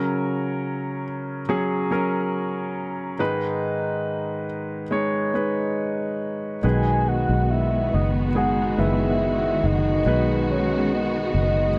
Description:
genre	pop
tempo	70 BPM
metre	4/4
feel	straight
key	B major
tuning	A4 = 438 Hz
part	clear concert grand piano	accompaniment	0.0-11.8 s	G#2 to C#5	-27 LUFS	equal	none
part	warm studio string section	sustained chords	6.6-11.8 s	D#3 to F#4	-29 LUFS	equal	none
part	fingered electric bass	bass	6.6-11.8 s	F#1 to B1	-26 LUFS	equal	none
part	soft octave-layered synth lead	melody	6.7-11.8 s	C#5 to G#5	-27 LUFS	equal	chorus, phaser, slapback echo
room	light reverb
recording	dry, close 1970s-style studio recording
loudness	-24 LUFS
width	mono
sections	0.0-11.8 A section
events	none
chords	0.0 F#; 3.2 G#m; 6.6 B6

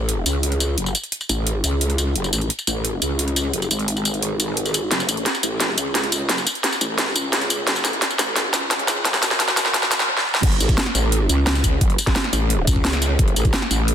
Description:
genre	dark technical drum and bass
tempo	174 BPM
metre	4/4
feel	straight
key	F# minor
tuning	A4 = 440 Hz
part	growl bass	bass	0.0-13.9 s	F#1 to F#2	-22 LUFS	equal	chorus, sidechain pumping
part	drum and bass drum kit	drums	0.1-13.9 s	crash cymbal, hi-hat, snare drum, tambourine, toms	-20 LUFS	equal	overdrive, high-pass filter on hats, high-pass filter on snare, high-pass filter on perc, high-pass filter on toms, high-pass filter on cymbals, high-pass filter on room
part	electronic kick drum	drums	10.4-13.5 s	none	-19 LUFS	equal	overdrive
room	light reverb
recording	dense, heavily limited modern master, high-pass filter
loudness	-18 LUFS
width	side -9 dB against mid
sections	0.0-10.4 A section; 10.4-13.9 B section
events	build-up 0.0-10.4; drum fill 4.9-10.1, 10.1-10.4; drop 10.4-13.9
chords	none

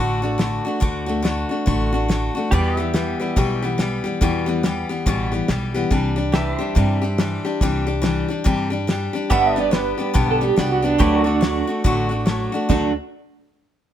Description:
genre	honky-tonk and classic country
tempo	141 BPM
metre	4/4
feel	swing 62% on 8ths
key	D mixolydian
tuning	A4 = 440 Hz
part	picked steel-string acoustic guitar	accompaniment	0.0-12.9 s	E2 to G4	-21 LUFS	left 3 dB	none
part	pedal steel guitar	sustained chords	0.0-12.7 s	F#4 to E5	-30 LUFS	right 3 dB	none
part	upright bass	bass	0.0-12.9 s	G1 to G2	-25 LUFS	right 1 dB	none
part	cloth-damped thuddy drum kit	drums	0.4-12.8 s	hi-hat, kick drum, snare drum, splash cymbal, toms	-20 LUFS	equal	none
part	electric guitar through a small old amp	second line	9.3-12.9 s	D4 to F#5	-21 LUFS	right 7 dB	tremolo
room	light reverb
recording	minimal, uncompressed stereo recording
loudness	-18 LUFS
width	side -10 dB against mid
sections	0.0-12.7 A section; 12.7-13.9 B section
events	none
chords	0.0 D; 2.5 Em; 5.9 Cadd9; 9.3 G; 11.0 D

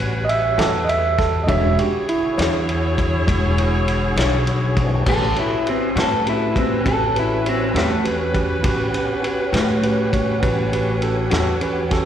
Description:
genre	slow blues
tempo	67 BPM (dotted quarters)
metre	12/8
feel	straight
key	A mixolydian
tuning	A4 = 442 Hz
part	clear saxophone section	sustained chords	0.0-12.1 s	C#4 to C#5	-27 LUFS	equal	none
part	tonewheel organ	sustained chords	0.0-12.1 s	D3 to D5	-29 LUFS	left 1 dB	slow rotary speaker, chorus vibrato
part	upright bass	bass	0.0-12.1 s	E1 to A2	-22 LUFS	equal	none
part	tine electric piano	accompaniment	0.2-12.1 s	G#3 to E5	-22 LUFS	right 3 dB	slapback echo
part	warm soul drum kit	drums	0.3-12.1 s	crash cymbal, kick drum, ride cymbal, snare drum	-24 LUFS	equal	none
part	electric guitar through a small old amp	accompaniment	0.6-11.5 s	A2 to C#5	-26 LUFS	left 6 dB	tremolo, slapback echo
part	electric guitar through a small old amp	melody	5.1-8.1 s	A3 to A4	-20 LUFS	left 1 dB	wide subtle chorus, slapback echo
room	light reverb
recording	live gig heard through the venue's PA, recital hall reverb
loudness	-17 LUFS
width	side -9 dB against mid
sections	0.0-5.1 A section; 5.1-12.1 A section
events	tine electric piano solo 0.0-5.1; clean electric guitar solo 5.1-12.1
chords	0.0 A13; 1.5 E13; 5.1 A13

